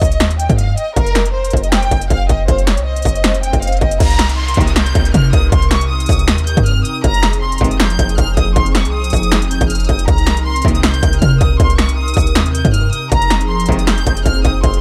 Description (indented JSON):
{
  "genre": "hip hop, trap",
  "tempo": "158 BPM",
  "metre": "4/4",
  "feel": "half-time",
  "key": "C minor",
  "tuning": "A4 = 445 Hz",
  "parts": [
    { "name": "warm symphonic violin section", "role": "melody", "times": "0.0-14.8 s", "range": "Bb4 to G6", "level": "-23 LUFS", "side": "equal", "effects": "analog delay" },
    { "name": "clean 808-style bass", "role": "bass", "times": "0.0-14.8 s", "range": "F1 to C3", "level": "-18 LUFS", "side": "equal", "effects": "none" },
    { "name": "techno drum kit", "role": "drums", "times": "0.0-14.8 s", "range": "crash cymbal, finger snaps, hi-hat, kick drum, snare drum", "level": "-18 LUFS", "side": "equal", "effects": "distortion" },
    { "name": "swell and downlifter", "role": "sound effects", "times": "2.4-7.0 s", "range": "none", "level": "-31 LUFS", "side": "equal", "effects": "none" },
    { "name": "hollow soft pad", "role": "sustained chords", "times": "4.0-14.8 s", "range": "C3 to Bb4", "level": "-26 LUFS", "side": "equal", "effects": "ensemble chorus" },
    { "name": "rich chamber string section", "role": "stabs", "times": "4.6-4.7, 7.6-7.8, 10.6-10.8, 13.7-13.8 s", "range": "Ab2 to Eb3", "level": "-26 LUFS", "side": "equal", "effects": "none" }
  ],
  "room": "little or no reverb",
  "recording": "echo-heavy mix",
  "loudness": "-14 LUFS",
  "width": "mono",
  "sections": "0.0-4.0 A section; 4.0-14.8 B section",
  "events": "swell 2.4-4.0",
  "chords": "0.0 Cm; 1.0 F5; 4.0 Cm7; 7.0 Fm7; 10.1 Cm7; 13.1 Fm7",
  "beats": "0.20 0.58 | 0.96 1.34 1.72 2.10 | 2.48 2.86 3.24 3.62 | 4.00 4.38 4.76 5.14 | 5.52 5.90 6.28 6.66 | 7.04 7.42 7.80 8.18 | 8.56 8.94 9.32 9.70 | 10.08 10.46 10.84 11.22 | 11.60 11.98 12.36 12.74 | 13.12 13.50 13.88 14.26 | 14.63"
}